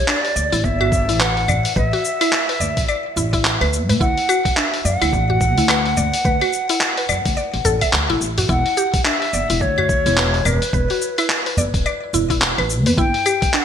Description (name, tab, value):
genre	organic downtempo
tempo	107 BPM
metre	4/4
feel	swing 59% on 16ths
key	E dorian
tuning	A4 = 440 Hz
part	breathy ney	melody	0.0-13.6 s	B4 to G5	-22 LUFS	equal	ping-pong delay
part	mallet-like synth pluck	arpeggios	0.1-13.6 s	D4 to E5	-23 LUFS	equal	chorus, cassette tape, ping-pong delay
part	dusty soul sampler-style drum kit	drums	0.1-13.6 s	cabasa, claves, handclaps, hi-hat	-21 LUFS	left 1 dB	gated reverb
part	upright bass	bass	0.4-13.1 s	E1 to A2	-21 LUFS	equal	sidechain pumping
part	electronic kick drum	drums	0.6-13.5 s	none	-21 LUFS	equal	none
part	udu	percussion	0.8-13.0 s	none	-25 LUFS	right 2 dB	none
room	light reverb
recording	bright 1980s-style digital production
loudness	-16 LUFS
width	side -8 dB against mid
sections	0.0-13.6 A section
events	none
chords	0.0 Asus4; 4.0 Dadd9; 8.5 E5; 13.0 G5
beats	0.08 0.64 1.20 | 1.76 2.32 2.88 3.44 | 4.01 4.57 5.13 5.69 | 6.25 6.81 7.37 7.93 | 8.49 9.05 9.61 10.17 | 10.73 11.30 11.86 12.42 | 12.98 13.54